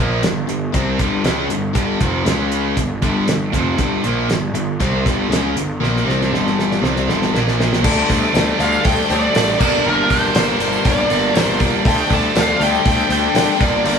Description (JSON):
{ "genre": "classic rock", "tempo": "119 BPM", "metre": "4/4", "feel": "straight", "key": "G minor", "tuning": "A4 = 443 Hz", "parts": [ { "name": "overdriven electric guitar", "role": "riff", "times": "0.0-14.0 s", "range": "F2 to Bb4", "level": "-21 LUFS", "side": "left 6 dB", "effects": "none" }, { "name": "tight distorted guitar", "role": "riff", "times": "0.0-14.0 s", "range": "F2 to D4", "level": "-21 LUFS", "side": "right 7 dB", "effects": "distortion" }, { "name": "fuzz picked electric bass", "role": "bass", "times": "0.0-14.0 s", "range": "F1 to D3", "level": "-21 LUFS", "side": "equal", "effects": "overdrive" }, { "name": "damped 70s drum kit", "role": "drums", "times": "0.2-14.0 s", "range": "crash cymbal, hi-hat, kick drum, snare drum", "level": "-20 LUFS", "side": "equal", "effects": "none" }, { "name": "bright tonewheel organ", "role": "sustained chords", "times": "7.8-14.0 s", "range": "D4 to Bb4", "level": "-31 LUFS", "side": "equal", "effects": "none" }, { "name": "tambourine", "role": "percussion", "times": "7.8-13.9 s", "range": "none", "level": "-38 LUFS", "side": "left 6 dB", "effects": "none" }, { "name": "bluesy overdriven lead guitar", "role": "melody", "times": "8.6-14.0 s", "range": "Bb4 to A5", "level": "-19 LUFS", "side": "left 1 dB", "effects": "wah, distortion" } ], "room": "moderate stone room reverb, RT60 1.1 s", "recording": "band playing live in one room, studio reverb", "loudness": "-14 LUFS", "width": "side -6 dB against mid", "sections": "0.0-7.8 A section; 7.8-14.0 B section", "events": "drum fill 5.8-7.8", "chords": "0.0 Gm; 2.3 C#5; 2.8 Gm; 7.3 Bb5; 7.8 Dsus4; 9.6 Gm; 11.9 Dsus4", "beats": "0.23 0.74 1.25 | 1.75 2.26 2.77 3.28 | 3.79 4.29 4.80 5.31 | 5.82 6.33 6.83 7.34 | 7.84 8.35 8.85 9.35 | 9.86 10.36 10.86 11.36 | 11.86 12.36 12.86 13.36 | 13.86" }